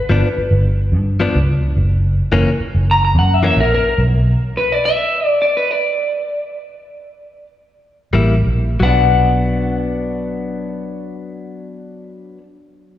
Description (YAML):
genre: blues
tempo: 86-108 BPM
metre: 4/4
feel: straight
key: B minor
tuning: A4 = 441 Hz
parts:
  - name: electric guitar through a small old amp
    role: melody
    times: 0.0-12.4 s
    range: A#4 to A#5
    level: -17 LUFS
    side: left 1 dB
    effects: wide subtle chorus, slapback echo
  - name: direct-recorded clean electric guitar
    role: stabs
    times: 0.1-3.6, 8.1-12.4 s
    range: E3 to E4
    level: -21 LUFS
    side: left 3 dB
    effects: slapback echo
  - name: vintage muted fingered electric bass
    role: bass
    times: 0.1-4.3, 8.1-12.3 s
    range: F#1 to G2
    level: -15 LUFS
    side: equal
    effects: none
room: moderate lush hall reverb, RT60 3.0 s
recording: live gig heard through the venue's PA, recital hall reverb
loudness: -14 LUFS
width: side -12 dB against mid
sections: 0.0-8.8 A section; 8.8-11.6 B section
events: slowing down 4.0-8.8; stop 4.0-8.1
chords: 0.0 G7; 1.8 F#7; 4.0 Bm; 8.1 Gm69/A; 8.8 Bm